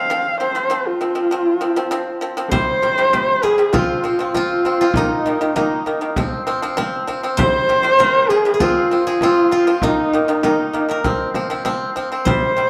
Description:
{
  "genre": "mongolian traditional, Mongolian folk",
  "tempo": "99 BPM",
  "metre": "4/4",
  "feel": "straight",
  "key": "F minor",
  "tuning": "A4 = 441 Hz",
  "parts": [
    { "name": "dark horsehead fiddle", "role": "melody", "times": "0.0-12.7 s", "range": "Eb4 to F5", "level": "-19 LUFS", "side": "equal", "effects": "none" },
    { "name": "pipa", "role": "arpeggios", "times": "0.0-12.7 s", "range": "C3 to C4", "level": "-24 LUFS", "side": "equal", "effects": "none" },
    { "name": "steel-string zither", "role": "second line", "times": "2.5-12.7 s", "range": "Eb4 to C5", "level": "-27 LUFS", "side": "equal", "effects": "none" },
    { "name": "frame drum", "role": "percussion", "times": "2.5-12.7 s", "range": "none", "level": "-26 LUFS", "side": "equal", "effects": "none" }
  ],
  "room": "wet recital hall reverb, RT60 1.3 s",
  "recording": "dark, warm production",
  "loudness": "-18 LUFS",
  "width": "mono",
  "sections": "0.0-2.5 A section; 2.5-12.7 B section",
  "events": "none",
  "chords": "0.0 F5; 2.5 C5; 3.7 F5; 5.0 Eb5; 6.2 F5; 7.4 C5; 8.6 F5; 9.8 Eb5; 11.0 F5"
}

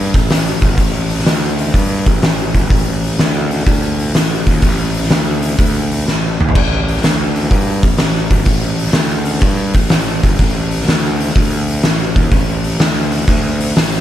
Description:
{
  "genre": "blues rock power trio and southern rock",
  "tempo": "125 BPM",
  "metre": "4/4",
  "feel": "swing 68% on 8ths",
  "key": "unclear",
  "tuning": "A4 = 440 Hz",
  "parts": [
    { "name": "fuzz fingered electric bass", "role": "bass", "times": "0.0-14.0 s", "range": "G1 to G2", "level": "-17 LUFS", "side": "equal", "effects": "overdrive" },
    { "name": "oversized low-tuned drum kit", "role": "drums", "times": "0.1-13.9 s", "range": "crash cymbal, hi-hat, kick drum, snare drum, toms", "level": "-14 LUFS", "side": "equal", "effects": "none" }
  ],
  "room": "little or no reverb",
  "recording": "none",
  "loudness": "-12 LUFS",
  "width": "side -12 dB against mid",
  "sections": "0.0-14.0 A section",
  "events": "drum fill 6.1-6.6",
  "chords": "none"
}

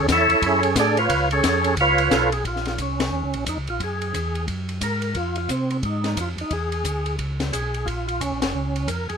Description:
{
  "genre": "soul jazz organ trio",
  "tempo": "177 BPM",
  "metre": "4/4",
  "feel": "swing 62% on 8ths",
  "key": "Bb minor",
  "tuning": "A4 = 440 Hz",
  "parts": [
    { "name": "percussive tonewheel organ", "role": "melody", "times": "0.0-9.2 s", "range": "C4 to E#5", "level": "-22 LUFS", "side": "right 1 dB", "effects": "slow rotary speaker, overdrive, chorus vibrato" },
    { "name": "mellow tonewheel organ", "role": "bass", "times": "0.0-9.2 s", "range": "Gb1 to C3", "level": "-26 LUFS", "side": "equal", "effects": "slow rotary speaker" },
    { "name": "compact cocktail drum kit", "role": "drums", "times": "0.1-9.2 s", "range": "hi-hat, kick drum, ride cymbal, snare drum", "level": "-28 LUFS", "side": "left 2 dB", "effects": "none" }
  ],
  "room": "light reverb",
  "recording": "minimal, uncompressed stereo recording",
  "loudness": "-20 LUFS",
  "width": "side -6 dB against mid",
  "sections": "0.0-2.4 A section; 2.4-9.2 B section",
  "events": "tonewheel organ solo 0.0-2.4; band accent 3.0, 8.4",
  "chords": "0.0 Dmaj9#11; 1.1 C#7b13; 2.4 Bbmadd9; 3.8 Gb9; 5.2 Fm7; 6.5 E7; 7.9 Gbmaj7#11"
}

